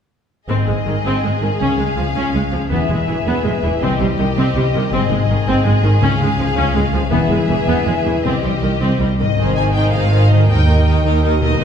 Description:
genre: cinematic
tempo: 108 BPM (dotted quarters)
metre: 6/8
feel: straight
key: Ab major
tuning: A4 = 438 Hz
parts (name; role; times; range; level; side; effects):
- rich symphonic violin section; melody; 0.5-11.6 s; Eb5 to Ab5; -25 LUFS; left 5 dB; none
- clear symphonic violin section; second line; 0.5-11.6 s; G4 to Eb5; -24 LUFS; left 4 dB; none
- clear symphonic viola section; accompaniment; 0.5-11.6 s; Eb3 to Eb4; -21 LUFS; right 1 dB; none
- concert harp; arpeggios; 0.5-11.6 s; Ab2 to E5; -21 LUFS; left 4 dB; none
- clear symphonic double bass section; bass; 0.5-11.6 s; E1 to Eb2; -19 LUFS; right 2 dB; none
- rich symphonic cello section; bass; 0.5-11.6 s; C2 to C3; -20 LUFS; right 2 dB; none
room: wet recital hall reverb, RT60 1.3 s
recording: heard from further back in the room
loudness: -14 LUFS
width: side -8 dB against mid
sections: 0.5-9.4 A section; 9.4-11.6 B section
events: build-up 0.5-9.4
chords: 0.5 Ab; 1.6 Db; 2.7 E; 3.8 Cm; 4.9 Ab; 6.0 Db; 7.1 E; 8.2 Cm; 9.4 Ab; 10.5 Eb

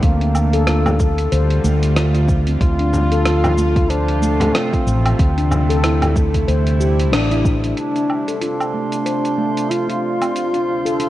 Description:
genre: organic downtempo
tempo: 93 BPM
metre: 4/4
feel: swing 57% on 16ths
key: D minor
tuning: A4 = 440 Hz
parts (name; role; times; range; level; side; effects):
- mellow duduk; melody; 0.0-11.1 s; Bb3 to F4; -23 LUFS; equal; tape echo, shimmer reverb
- bowed-like drone; sustained chords; 0.0-11.1 s; D2 to F4; -26 LUFS; right 1 dB; built-in reverb, sidechain pumping, shimmer reverb
- handpan; arpeggios; 0.0-11.1 s; A3 to C5; -21 LUFS; left 1 dB; low-pass filter, tape echo, shimmer reverb
- fretless electric bass; bass; 0.0-7.7 s; A1 to D2; -17 LUFS; equal; none
- dusty soul sampler-style drum kit; drums; 0.0-11.1 s; hi-hat, rim click, shaker, woodblock; -25 LUFS; right 1 dB; overdrive
- electronic kick drum; drums; 0.0-7.6 s; none; -18 LUFS; equal; overdrive
- frame drum; percussion; 0.9-6.1 s; none; -25 LUFS; left 1 dB; none
- drifting glass-harmonics texture; texture; 8.2-11.1 s; C5; -30 LUFS; right 1 dB; chorus, built-in reverb, shimmer reverb
room: moderate echo chamber reverb, RT60 2.1 s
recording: worn, warbling old tape, cassette tape, warbly pitch drift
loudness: -15 LUFS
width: side -14 dB against mid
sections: 0.0-7.8 A section; 7.8-11.1 B section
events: band accent 7.1-7.4; filter sweep on handpan 7.8-11.1; filter sweep on synth drone 7.8-11.1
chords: 0.0 Gm7/D; 2.6 F/D; 5.2 Am7/D; 7.8 Dm7; 10.4 Gm7/D

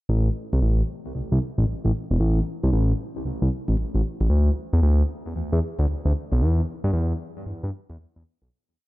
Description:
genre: R&B, new jack swing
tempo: 114 BPM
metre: 4/4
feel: swing 66% on 16ths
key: A minor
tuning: A4 = 440 Hz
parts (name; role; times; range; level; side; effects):
- smooth synth bass; solo; 0.1-8.5 s; E1 to G2; -21 LUFS; equal; tape echo
room: little or no reverb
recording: none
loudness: -21 LUFS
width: side -18 dB against mid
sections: 0.1-8.5 breakdown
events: fade-out 6.4-8.5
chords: none

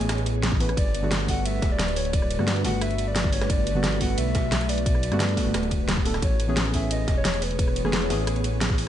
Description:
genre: liquid drum and bass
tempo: 176 BPM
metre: 4/4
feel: straight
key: unclear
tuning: A4 = 440 Hz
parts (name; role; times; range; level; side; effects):
- deep mellow chord stab; accompaniment; 0.0-8.9 s; D3 to B4; -30 LUFS; equal; chorus, diffuse ambient delay
- ethereal airy pad; sustained chords; 0.0-8.9 s; A3 to C#5; -32 LUFS; equal; ensemble chorus, built-in reverb, sidechain pumping
- dark detuned saw bass; bass; 0.0-8.9 s; D1 to G2; -27 LUFS; equal; none
- jungle sampler-style drum kit; drums; 0.0-8.9 s; ride cymbal, snare drum; -34 LUFS; right 1 dB; high-pass filter on cymbals, high-pass filter on snare, high-pass filter on room
- pop drum kit; drums; 0.1-8.9 s; hi-hat, rim click, snare drum; -29 LUFS; equal; none
- electronic kick drum; drums; 0.5-8.8 s; none; -26 LUFS; equal; none
- hollow clarinet-like synth lead; melody; 0.8-7.9 s; B4 to F#5; -32 LUFS; left 1 dB; chorus, vintage 12-bit sampler grit, tape echo
room: light reverb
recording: nothing above 10.5 kHz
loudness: -22 LUFS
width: side -11 dB against mid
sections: 0.0-8.9 A section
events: none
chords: 0.0 Amaj9; 0.8 Gmaj9; 6.2 Amaj9

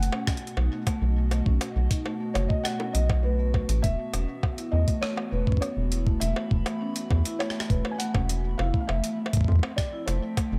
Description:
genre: IDM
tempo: 101 BPM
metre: 4/4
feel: straight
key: unclear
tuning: A4 = 440 Hz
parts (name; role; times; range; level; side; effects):
- felt-muted upright piano; melody; 0.0-10.6 s; B4 to G#5; -37 LUFS; equal; tape echo
- warbly tape-like pad; sustained chords; 0.0-10.6 s; B2 to B5; -41 LUFS; equal; chorus, built-in reverb, phaser, vintage 12-bit sampler grit, sidechain pumping
- vibraphone with soft mallets; arpeggios; 0.0-10.4 s; A3 to E4; -36 LUFS; equal; tape echo
- rubbery square bass; bass; 0.0-10.6 s; E1 to F2; -27 LUFS; equal; none
- jungle sampler-style drum kit; drums; 0.0-10.5 s; bongos, hi-hat, rim click; -37 LUFS; equal; none
- electronic kick drum; drums; 0.3-10.5 s; none; -27 LUFS; equal; none
room: light reverb, digital ambience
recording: echo-heavy mix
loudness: -26 LUFS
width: mono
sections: 0.0-10.6 A section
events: none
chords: 0.0 B; 3.8 Esus2; 8.6 Fmaj7

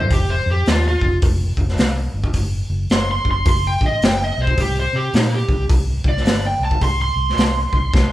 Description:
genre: blues rock power trio and southern rock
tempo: 107 BPM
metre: 4/4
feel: swing 63% on 8ths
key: unclear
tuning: A4 = 442 Hz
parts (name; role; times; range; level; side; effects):
- overdriven slide guitar; melody; 0.0-8.1 s; Eb4 to C6; -21 LUFS; right 1 dB; none
- vintage muted fingered electric bass; bass; 0.0-8.1 s; F1 to C3; -20 LUFS; equal; none
- raw garage drum kit; drums; 0.0-8.1 s; hi-hat, kick drum, snare drum, toms; -19 LUFS; equal; none
room: light reverb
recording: band playing live in one room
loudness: -16 LUFS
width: side -15 dB against mid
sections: 0.0-8.1 A section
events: electric slide guitar solo 0.0-8.1; drum fill 7.9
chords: 0.1 F5; 2.3 F#(b5, no3); 4.6 C5

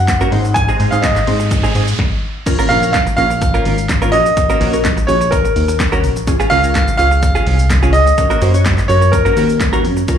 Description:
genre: dance-pop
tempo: 126 BPM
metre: 4/4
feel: straight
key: unclear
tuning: A4 = 440 Hz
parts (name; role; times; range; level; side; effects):
- bright grand piano; melody; 0.0-9.6 s; Bb4 to Ab5; -16 LUFS; right 1 dB; ping-pong delay, slapback echo
- chorused synth bass; bass; 0.0-10.0 s; Ab1 to Ab2; -16 LUFS; equal; sidechain pumping
- riser and impact; sound effects; 0.0-4.4 s; none; -27 LUFS; equal; slapback echo
- direct-recorded clean electric guitar; riff; 0.1-10.1 s; Ab3 to Bb4; -22 LUFS; right 4 dB; wide subtle chorus, slapback echo
- punchy analog drum machine; drums; 0.1-10.2 s; crash cymbal, handclaps, hi-hat, kick drum, shaker, snare drum; -17 LUFS; equal; none
- tube shaker; percussion; 0.1-10.2 s; none; -37 LUFS; left 4 dB; none
- glassy wavetable pluck; accompaniment; 0.2-10.2 s; Ab3 to Db5; -21 LUFS; left 1 dB; chorus, sidechain pumping, slapback echo
room: digital ambience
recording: live gig heard through the venue's PA, club reverb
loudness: -11 LUFS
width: side -8 dB against mid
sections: 0.0-2.5 A section; 2.5-10.2 B section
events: riser 0.0-2.5; stop 2.0-2.5; impact 2.5-4.4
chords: 0.3 Ab; 2.5 Bbm; 4.1 Gb/Bb; 6.3 Db; 8.2 Gb

